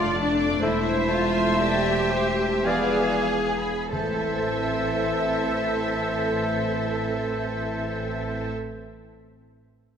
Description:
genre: classical, slow romantic movement for symphony orchestra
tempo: 46-69 BPM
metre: 3/4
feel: rubato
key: A minor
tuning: A4 = 440 Hz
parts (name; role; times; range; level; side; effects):
- rich studio violin section; melody; 0.0-8.5 s; D5 to F5; -31 LUFS; left 2 dB; none
- bright concert flute; second line; 0.0-8.5 s; B4 to E5; -33 LUFS; left 2 dB; none
- rich symphonic violin section; second line; 0.0-8.5 s; C5 to D6; -35 LUFS; left 4 dB; none
- warm clarinet; second line; 0.0-8.5 s; E4 to D5; -38 LUFS; left 1 dB; none
- warm oboe; second line; 0.0-8.5 s; C5 to F5; -36 LUFS; right 2 dB; none
- mellow bassoon; accompaniment; 0.0-8.5 s; E3 to B3; -36 LUFS; equal; none
- rich symphonic viola section; accompaniment; 0.0-8.5 s; A3 to C4; -35 LUFS; right 1 dB; none
- clear trombone section; sustained chords; 0.0-8.5 s; D3 to C4; -36 LUFS; right 4 dB; none
- mellow French horn section; sustained chords; 0.0-8.5 s; A3 to G#4; -33 LUFS; left 4 dB; none
- concert harp; arpeggios; 0.0-8.9 s; E2 to E5; -36 LUFS; left 6 dB; none
- clear trumpet; stabs; 0.0-8.5 s; C5 to E5; -34 LUFS; equal; none
- rich symphonic cello section; bass; 0.0-8.5 s; D4 to A4; -28 LUFS; right 1 dB; none
- rich symphonic double bass section; bass; 0.0-8.5 s; E1 to A1; -31 LUFS; right 3 dB; none
- timpani; percussion; 3.9-8.6 s; A2; -40 LUFS; equal; none
room: wet concert hall reverb, RT60 2.2 s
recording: none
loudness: -22 LUFS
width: side -8 dB against mid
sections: 0.0-3.9 A section; 3.9-7.7 B section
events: slowing down 0.0-3.9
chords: 0.0 Dm/F; 0.6 Am/E; 2.7 E7b9; 3.9 Am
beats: | 0.61 1.58 2.65 | 3.92 5.20 6.47

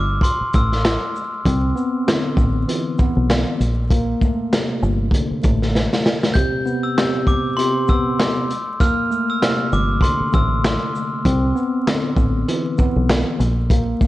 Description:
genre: hip hop, boom-bap hip-hop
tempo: 98 BPM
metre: 4/4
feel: swing 57% on 16ths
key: C major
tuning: A4 = 439 Hz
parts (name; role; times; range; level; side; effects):
- glockenspiel with brass mallets; melody; 0.0-0.8, 6.3-10.6 s; C6 to G6; -24 LUFS; left 1 dB; high-pass filter, low-pass filter, digital delay
- deep dub fingered electric bass; bass; 0.0-5.9, 9.7-13.9 s; G1 to C2; -20 LUFS; equal; none
- crunchy breakbeat drum kit; drums; 0.2-14.1 s; handclaps, hi-hat, kick drum, shaker, snare drum; -20 LUFS; equal; vintage 12-bit sampler grit
- tine electric piano; accompaniment; 1.5-14.1 s; C3 to C4; -22 LUFS; equal; medium stereo tremolo, high-pass filter, low-pass filter
room: light reverb, small room ambience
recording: vinyl crackle, nothing above 10.8 kHz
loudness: -16 LUFS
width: side -16 dB against mid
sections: 0.0-14.1 A section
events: break 0.0-1.5; drum fill 5.7-6.4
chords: 0.0 Gsus2; 1.5 Cmaj9; 3.6 Bbmaj9; 6.4 Cmaj7; 8.5 Bbmaj9; 11.3 Cmaj9; 13.4 N.C.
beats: 0.23 0.84 | 1.46 2.07 2.68 3.29 | 3.90 4.52 5.13 5.74 | 6.35 6.96 7.58 8.19 | 8.80 9.41 10.03 10.64 | 11.25 11.86 12.48 13.09 | 13.70

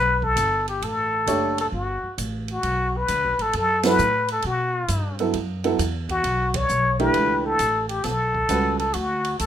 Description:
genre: modal jazz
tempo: 133 BPM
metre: 4/4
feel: swing 68% on 8ths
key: E dorian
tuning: A4 = 440 Hz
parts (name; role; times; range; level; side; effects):
- trumpet with plunger mute; melody; 0.0-9.5 s; F#4 to C#5; -22 LUFS; left 2 dB; none
- upright bass; bass; 0.0-9.5 s; F#1 to B2; -28 LUFS; equal; none
- open jazz drum kit; drums; 0.2-9.5 s; hi-hat, kick drum, ride cymbal, snare drum; -32 LUFS; right 4 dB; none
- warm upright piano; accompaniment; 1.3-8.8 s; E3 to C#5; -23 LUFS; right 4 dB; none
room: light reverb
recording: minimal, uncompressed stereo recording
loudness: -20 LUFS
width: side -10 dB against mid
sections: 0.0-9.5 A section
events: band accent 3.8, 6.5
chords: 0.0 E13sus4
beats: 0.38 | 0.83 1.28 1.73 2.18 | 2.63 3.08 3.53 3.98 | 4.44 4.89 5.34 5.79 | 6.24 6.69 7.14 7.59 | 8.05 8.50 8.95 9.40

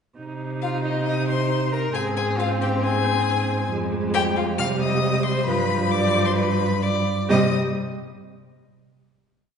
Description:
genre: quick classical-period movement for string quartet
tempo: 135 BPM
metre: 4/4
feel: straight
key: C minor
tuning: A4 = 440 Hz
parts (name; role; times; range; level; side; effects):
- clear viola; accompaniment; 0.2-7.5 s; F3 to Eb4; -26 LUFS; right 1 dB; none
- rich cello; bass; 0.2-7.5 s; F2 to C3; -25 LUFS; right 2 dB; none
- rich violin; melody; 0.6-7.6 s; Eb5 to F6; -27 LUFS; left 7 dB; none
- rich violin; second line; 0.6-7.5 s; Eb4 to F5; -27 LUFS; left 2 dB; none
room: wet concert hall reverb, RT60 1.8 s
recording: heard from further back in the room, nothing above 10.9 kHz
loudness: -20 LUFS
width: side -6 dB against mid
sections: 0.2-7.3 A section; 7.3-9.1 final chord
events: none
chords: 0.2 Cm; 2.0 Ab; 3.7 Fm; 4.6 Cm; 5.5 G7; 7.3 C5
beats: | 0.18 0.62 1.07 1.51 | 1.95 2.39 2.83 3.27 | 3.71 4.15 4.59 5.04 | 5.48 5.92 6.38 6.83 | 7.30

